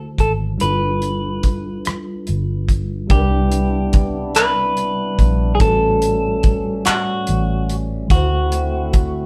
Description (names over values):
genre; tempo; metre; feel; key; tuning
slow six-eight R&B; 48 BPM (dotted quarters); 6/8; straight; C major; A4 = 439 Hz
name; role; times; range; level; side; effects
mellow tine electric piano; accompaniment; 0.0-9.3 s; A2 to C5; -27 LUFS; equal; none
vintage muted fingered electric bass; bass; 0.0-9.3 s; G1 to D2; -23 LUFS; equal; none
clean electric guitar; melody; 0.2-9.3 s; F#4 to B4; -23 LUFS; equal; none
damped 70s drum kit; drums; 0.2-9.1 s; handclaps, hi-hat, kick drum, rim click; -19 LUFS; equal; none
tonewheel organ; sustained chords; 3.1-9.3 s; C3 to F#4; -30 LUFS; equal; slow rotary speaker
room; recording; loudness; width
moderate studio reverb, RT60 0.7 s; band playing live in one room, faint mains hum; -18 LUFS; mono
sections
0.0-3.1 A section; 3.1-9.3 B section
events
none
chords
0.0 D9; 0.6 G13; 3.1 Cmaj9; 5.6 A13; 8.1 D9